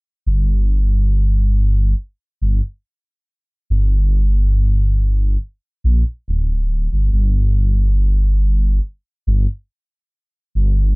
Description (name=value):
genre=trip hop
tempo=70 BPM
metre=4/4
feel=straight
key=G minor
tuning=A4 = 439 Hz
part: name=dark detuned saw bass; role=bass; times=0.3-11.0 s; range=D1 to Bb1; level=-14 LUFS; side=equal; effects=tube saturation
room=little or no reverb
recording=low-pass filter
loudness=-15 LUFS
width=side -31 dB against mid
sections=0.3-11.0 A section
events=filter sweep 0.3-11.0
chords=none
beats=| 0.26 1.12 1.98 2.83 | 3.69 4.55 5.41 6.26 | 7.12 7.98 8.84 9.69 | 10.55